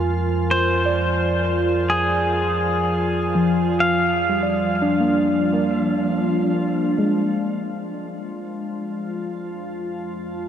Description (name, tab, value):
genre	ambient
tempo	63 BPM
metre	4/4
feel	straight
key	F dorian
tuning	A4 = 440 Hz
part	muted felt-like synth keys	arpeggios	0.0-10.5 s	F3 to Ab5	-22 LUFS	left 1 dB	chorus, tape echo
part	round analog bass	bass	0.0-10.5 s	F2	-28 LUFS	equal	tube saturation
part	organ-like drone	drone	0.0-10.5 s	F3 to F4	-25 LUFS	right 2 dB	ensemble chorus, built-in reverb
part	pedal steel guitar	melody	0.5-6.6 s	Ab4 to F5	-22 LUFS	equal	tape echo
room	wet huge ambient reverb, RT60 7.0 s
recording	none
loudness	-18 LUFS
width	side -9 dB against mid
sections	0.0-7.6 A section; 7.6-10.5 B section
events	fade-out on analog synth bass 0.0-7.6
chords	0.0 Fm